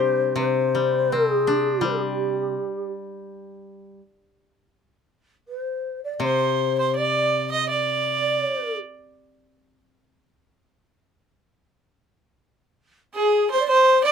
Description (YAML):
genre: japanese traditional, Japanese chamber music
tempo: 82 BPM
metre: 2/4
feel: rubato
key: unclear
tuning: A4 = 441 Hz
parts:
  - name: mellow long shakuhachi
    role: melody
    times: 0.0-2.9, 5.5-8.8, 13.2-14.1 s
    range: G4 to Eb5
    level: -22 LUFS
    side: left 3 dB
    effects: none
  - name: koto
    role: accompaniment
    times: 0.0-8.4 s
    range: C3 to G4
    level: -27 LUFS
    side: left 1 dB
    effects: none
  - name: clear fiddle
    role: second line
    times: 6.2-8.8, 13.1-14.1 s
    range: Ab4 to Eb5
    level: -21 LUFS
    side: right 5 dB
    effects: none
room: light reverb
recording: close, detailed microphones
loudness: -20 LUFS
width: side -7 dB against mid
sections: 0.4-12.1 A section; 12.1-14.1 B section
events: none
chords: none